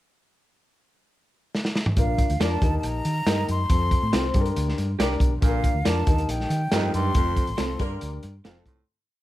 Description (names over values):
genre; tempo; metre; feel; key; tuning
uptempo 1960s-style soul; 139 BPM; 4/4; straight; Bb major; A4 = 439 Hz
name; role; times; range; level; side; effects
crunchy breakbeat drum kit; drums; 1.5-8.8 s; hi-hat, kick drum, snare drum, toms; -24 LUFS; equal; none
breathy concert flute; melody; 2.0-8.2 s; F5 to C6; -30 LUFS; left 1 dB; plate reverb
dark grand piano; accompaniment; 2.0-8.9 s; C4 to C6; -30 LUFS; left 4 dB; none
hollow-body short-scale fingered electric bass; bass; 2.0-8.8 s; F1 to Eb3; -26 LUFS; equal; none
electric guitar through a small old amp; stabs; 2.4-8.6 s; C4 to Eb5; -31 LUFS; right 5 dB; none
raspy baritone saxophone; riff; 5.4-8.8 s; F2 to Bb2; -30 LUFS; right 6 dB; none
mellow horn section; second line; 7.8-8.1 s; Bb3 to Bb4; -39 LUFS; right 3 dB; none
room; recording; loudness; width
light reverb; none; -21 LUFS; side -15 dB against mid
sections
0.2-2.0 pickup bar; 2.0-8.9 verse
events
drum fill 1.5-2.0; fade-out 7.2-8.9; band accent 7.2-8.9; grand piano fill 8.2-8.9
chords
0.2 N.C.; 2.0 Bb; 2.6 Eb; 3.7 F; 4.3 Gm; 5.4 Bb; 6.1 Eb; 7.2 F; 7.8 Gm; 8.4 F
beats
| 0.24 0.67 1.10 1.54 | 1.97 2.40 2.83 3.27 | 3.70 4.13 4.56 4.99 | 5.42 5.86 6.29 6.72 | 7.15 7.58 8.02 8.45